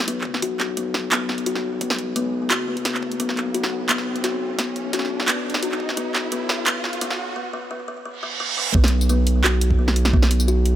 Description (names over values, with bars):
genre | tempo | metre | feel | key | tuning
half-time drum and bass | 173 BPM | 4/4 | half-time | unclear | A4 = 440 Hz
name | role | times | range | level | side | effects
saturated sub bass | bass | 0.0-10.8 s | F#1 to B1 | -24 LUFS | right 1 dB | high-pass filter
electronic kick drum | drums | 0.0-6.0, 8.7-10.2 s | none | -20 LUFS | right 1 dB | high-pass filter on kick, small room ambience
riser and reverse cymbal | sound effects | 0.8-8.7 s | none | -30 LUFS | right 3 dB | none
kalimba | arpeggios | 0.1-10.8 s | B3 to F#4 | -26 LUFS | left 4 dB | vintage 12-bit sampler grit, low-pass filter, digital delay
drum and bass drum kit | drums | 0.1-10.7 s | handclaps, hi-hat, snare drum, tambourine | -24 LUFS | right 1 dB | high-pass filter on hats, small room ambience, high-pass filter on snare, high-pass filter on perc
room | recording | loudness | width
light reverb | high-pass filter | -19 LUFS | side -12 dB against mid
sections
0.0-8.7 A section; 8.7-10.8 B section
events
build-up 0.0-8.7; filter sweep on kalimba 0.0-8.7; riser 0.8-7.4; break 7.4-8.7; reverse cymbal 8.2-8.7; drop 8.7-10.8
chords
0.0 B5